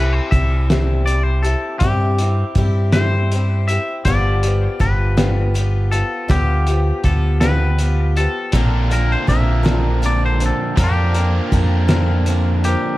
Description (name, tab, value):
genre	folk rock and heartland rock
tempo	54 BPM (dotted quarters)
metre	6/8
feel	straight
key	C major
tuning	A4 = 440 Hz
part	twangy electric guitar	melody	0.0-13.0 s	G4 to E5	-24 LUFS	left 1 dB	digital delay
part	picked swing-style acoustic guitar	accompaniment	0.0-13.0 s	G2 to Bb4	-24 LUFS	left 3 dB	none
part	fingered electric bass	bass	0.0-12.7 s	G1 to G2	-17 LUFS	equal	none
part	cloth-damped thuddy drum kit	drums	0.3-12.8 s	hi-hat, kick drum, snare drum	-20 LUFS	equal	none
part	biting overdriven guitar	riff	8.5-13.0 s	Bb2 to Bb4	-22 LUFS	right 2 dB	none
room	little or no reverb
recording	dark, warm production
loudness	-15 LUFS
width	side -17 dB against mid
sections	0.0-13.0 A section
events	none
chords	0.0 C; 4.1 G7; 8.5 Bbadd9